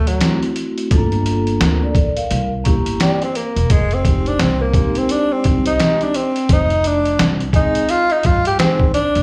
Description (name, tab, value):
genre	hip hop, jazz-hop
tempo	86 BPM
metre	4/4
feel	swing 61% on 16ths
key	F dorian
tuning	A4 = 440 Hz
part	breathy tenor saxophone	melody	0.0-9.2 s	F#3 to G4	-20 LUFS	equal	slapback echo
part	upright bass	bass	0.0-9.2 s	E1 to G2	-22 LUFS	equal	none
part	trip hop sampler-style drum kit	drums	0.1-9.2 s	hi-hat, kick drum, snare drum	-20 LUFS	equal	overdrive
part	vibraphone with soft mallets	accompaniment	0.2-8.9 s	Ab3 to F5	-24 LUFS	equal	slapback echo
room	light reverb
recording	live gig heard through the venue's PA, club reverb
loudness	-17 LUFS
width	mono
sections	0.0-9.2 A section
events	tenor saxophone solo 0.0-9.2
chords	0.0 D7; 0.9 Gm9; 2.3 C7b9; 3.7 Fm9